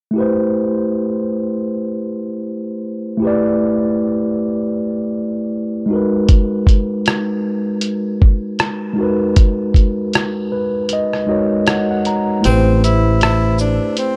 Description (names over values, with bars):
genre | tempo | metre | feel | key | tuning
lo-fi hip hop | 78 BPM | 4/4 | swing 55% on 16ths | unclear | A4 = 439 Hz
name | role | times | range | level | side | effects
mellow tine electric piano | accompaniment | 0.1-14.2 s | G#3 to A#5 | -20 LUFS | equal | cassette tape
lo-fi sampler-style drum kit | drums | 6.3-14.2 s | hi-hat, kick drum, rim click, shaker | -16 LUFS | equal | none
bright tenor saxophone | melody | 12.4-14.2 s | C4 to E4 | -21 LUFS | equal | none
upright bass | bass | 12.5-13.8 s | A1 | -17 LUFS | equal | none
room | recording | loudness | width
light reverb, digital ambience | dark, warm production | -17 LUFS | mono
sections
0.1-12.4 A section; 12.4-14.2 B section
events
tine electric piano fill 10.1-12.4; kick muted 12.4-14.2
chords
0.1 Am9; 5.9 G#m9; 12.4 Am9